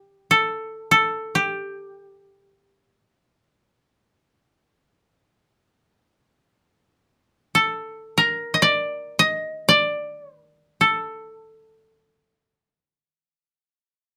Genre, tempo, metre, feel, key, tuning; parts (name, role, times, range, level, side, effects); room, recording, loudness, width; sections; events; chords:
japanese traditional, Japanese chamber music; free time; G hirajoshi; A4 = 441 Hz
koto; solo; 0.0-14.2 s; G4 to Eb5; -20 LUFS; equal
light reverb; -21 LUFS; mono
0.0-14.2 A section